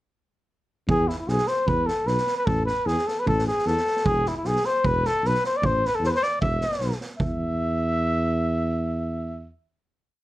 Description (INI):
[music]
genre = balkan folk, Balkan brass band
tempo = 152 BPM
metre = 2/4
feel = straight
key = unclear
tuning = A4 = 439 Hz
[part]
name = dark trumpet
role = melody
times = 0.9-9.5 s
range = E4 to E5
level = -24 LUFS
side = equal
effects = none
[part]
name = dark tuba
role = bass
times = 0.9-9.5 s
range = E1 to E2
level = -26 LUFS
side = equal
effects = none
[part]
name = street-band drum kit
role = percussion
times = 0.9-7.4 s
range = kick drum, snare drum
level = -29 LUFS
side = right 2 dB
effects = none
[sound]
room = light reverb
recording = none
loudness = -22 LUFS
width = side -15 dB against mid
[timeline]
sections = 0.9-7.2 A section; 7.2-8.7 final note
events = none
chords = 0.9 E5; 2.5 A5; 4.1 E5; 5.6 A5; 6.4 E5; 7.2 N.C.